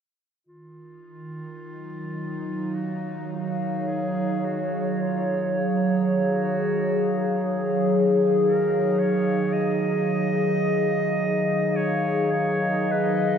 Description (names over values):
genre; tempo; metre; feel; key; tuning
ambient; 53 BPM; 4/4; straight; Eb minor; A4 = 440 Hz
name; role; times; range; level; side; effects
bowed-like drone; drone; 1.2-13.4 s; Eb3 to Eb4; -40 LUFS; left 1 dB; built-in reverb
warm clarinet; melody; 0.5-13.4 s; F4 to Eb5; -32 LUFS; right 1 dB; tape echo
warbly tape-like pad; sustained chords; 1.3-13.4 s; Eb3 to F5; -22 LUFS; equal; chorus, built-in reverb
room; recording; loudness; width
wet lush hall reverb, RT60 2.9 s; dreamy mix soaked in reverb; -21 LUFS; side -7 dB against mid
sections
0.4-13.4 A section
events
fade-in on synth drone 0.4-13.4; fade-in on clarinet 0.4-13.4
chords
0.4 Ebm11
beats
| 0.45 1.58 2.71 3.84 | 4.97 6.11 7.24 8.37 | 9.50 10.63 11.77 12.90